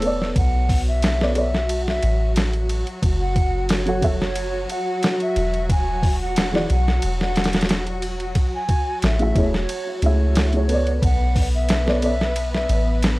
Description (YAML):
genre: trip hop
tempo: 90 BPM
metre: 4/4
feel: straight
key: B dorian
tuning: A4 = 439 Hz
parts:
  - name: mellow hollow silver concert flute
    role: melody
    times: 0.0-13.0 s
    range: A4 to G#5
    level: -28 LUFS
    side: equal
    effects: tape echo
  - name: felt-muted upright piano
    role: accompaniment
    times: 0.0-12.1 s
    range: E3 to F#5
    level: -24 LUFS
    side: equal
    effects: harmonic tremolo, vintage 12-bit sampler grit, low-pass filter, tape echo
  - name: soft 808-style bass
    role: bass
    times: 0.0-13.2 s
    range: E1 to C#2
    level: -22 LUFS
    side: equal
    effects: none
  - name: boom bap sampler-style drum kit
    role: drums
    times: 0.0-13.2 s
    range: hi-hat, kick drum, ride cymbal, snare drum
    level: -22 LUFS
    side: equal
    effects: none
  - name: dark studio string section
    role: sustained chords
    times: 0.4-13.2 s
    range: F#3 to B4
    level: -29 LUFS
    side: equal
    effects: none
room: studio reverb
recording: dry, gritty hardware recording, vinyl crackle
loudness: -18 LUFS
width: side -20 dB against mid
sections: 0.0-13.2 A section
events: filter sweep on felt piano 0.0-13.2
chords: 0.4 Bm9; 3.0 F#7(no3); 5.7 N.C.; 8.4 Amaj7; 11.0 Bm9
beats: | 0.36 1.02 1.69 2.36 | 3.02 3.69 4.36 5.02 | 5.69 6.36 7.02 7.69 | 8.36 9.02 9.69 10.36 | 11.02 11.69 12.36 13.02